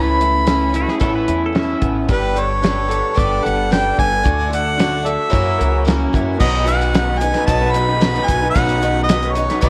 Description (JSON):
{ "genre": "folk rock and heartland rock", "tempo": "112 BPM", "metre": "4/4", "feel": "straight", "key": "unclear", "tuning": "A4 = 439 Hz", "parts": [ { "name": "clear harmonica", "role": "melody", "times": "0.0-9.7 s", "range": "B4 to B5", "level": "-22 LUFS", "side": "equal", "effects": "slapback echo" }, { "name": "picked twelve-string acoustic guitar", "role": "accompaniment", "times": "0.0-9.7 s", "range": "F#2 to A4", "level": "-25 LUFS", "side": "equal", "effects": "none" }, { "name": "rich studio string section", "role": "sustained chords", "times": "0.0-9.7 s", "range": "B3 to D5", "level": "-33 LUFS", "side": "equal", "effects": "none" }, { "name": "electric guitar through a small old amp", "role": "riff", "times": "0.0-9.7 s", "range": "A2 to B4", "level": "-26 LUFS", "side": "equal", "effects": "none" }, { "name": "upright bass", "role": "bass", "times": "0.0-9.7 s", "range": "G1 to B2", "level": "-24 LUFS", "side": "equal", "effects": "none" }, { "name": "damped 70s drum kit", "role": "drums", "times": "0.2-9.7 s", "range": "crash cymbal, hi-hat, kick drum, snare drum", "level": "-22 LUFS", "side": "equal", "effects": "none" }, { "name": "pedal steel guitar", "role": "second line", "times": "0.8-2.0 s", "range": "F#4 to E5", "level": "-29 LUFS", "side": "equal", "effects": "none" }, { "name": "tube shaker", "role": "percussion", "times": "6.4-9.7 s", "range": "none", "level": "-46 LUFS", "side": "equal", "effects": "none" } ], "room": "light reverb, small room ambience", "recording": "worn, warbling old tape, cassette tape, warbly pitch drift", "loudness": "-17 LUFS", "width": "mono", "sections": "0.0-6.4 A section; 6.4-9.7 B section", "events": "none", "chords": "0.0 Aadd9; 2.1 Gadd9; 4.3 D; 5.3 F#7; 6.4 B" }